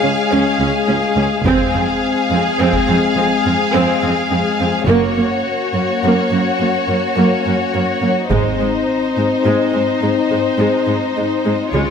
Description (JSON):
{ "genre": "cinematic, epic orchestral film score", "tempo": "70 BPM (dotted quarters)", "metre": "12/8", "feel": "straight", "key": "unclear", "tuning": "A4 = 440 Hz", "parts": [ { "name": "rich symphonic violin section", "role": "melody", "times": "0.0-11.9 s", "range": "C5 to F5", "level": "-21 LUFS", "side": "left 2 dB", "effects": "none" }, { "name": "warm symphonic violin section", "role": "second line", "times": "0.0-11.9 s", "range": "Eb4 to Ab4", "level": "-21 LUFS", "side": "left 3 dB", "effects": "none" }, { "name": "warm studio viola section", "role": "accompaniment", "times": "0.0-11.9 s", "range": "Ab3 to Db4", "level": "-20 LUFS", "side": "right 3 dB", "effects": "none" }, { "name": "mellow French horn section", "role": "sustained chords", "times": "0.0-11.9 s", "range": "Ab3 to F4", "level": "-20 LUFS", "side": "left 5 dB", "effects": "none" }, { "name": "rich studio cello section", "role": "bass", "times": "0.0-11.8 s", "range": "Db2 to Db3", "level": "-21 LUFS", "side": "right 3 dB", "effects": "none" }, { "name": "rich studio double bass section", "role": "bass", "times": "1.4-11.9 s", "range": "F1 to Db2", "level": "-23 LUFS", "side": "right 4 dB", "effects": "none" }, { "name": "taiko ensemble", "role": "drums", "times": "1.4-3.0, 8.3-9.4 s", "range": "none", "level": "-24 LUFS", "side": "equal", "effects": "none" } ], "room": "moderate scoring stage reverb, RT60 2.0 s", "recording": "none", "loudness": "-14 LUFS", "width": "side -7 dB against mid", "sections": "0.0-11.9 A section", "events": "none", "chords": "0.0 Db; 1.4 Fm; 4.9 Gb; 8.3 Ab" }